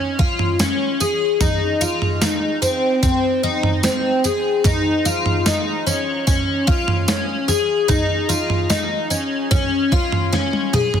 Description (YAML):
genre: dream pop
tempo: 74 BPM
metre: 4/4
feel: straight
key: unclear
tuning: A4 = 437 Hz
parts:
  - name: picked twelve-string acoustic guitar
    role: arpeggios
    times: 0.0-11.0 s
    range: C4 to Ab4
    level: -18 LUFS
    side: left 2 dB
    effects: analog chorus, digital delay
  - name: crisp 8-bit digital drum machine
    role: drums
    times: 0.2-11.0 s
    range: kick drum, snare drum, tambourine, toms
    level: -20 LUFS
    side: right 1 dB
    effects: overdrive
room: light reverb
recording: dense, heavily limited modern master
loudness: -16 LUFS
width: side -8 dB against mid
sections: 0.0-11.0 A section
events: drum fill 10.3-11.0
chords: none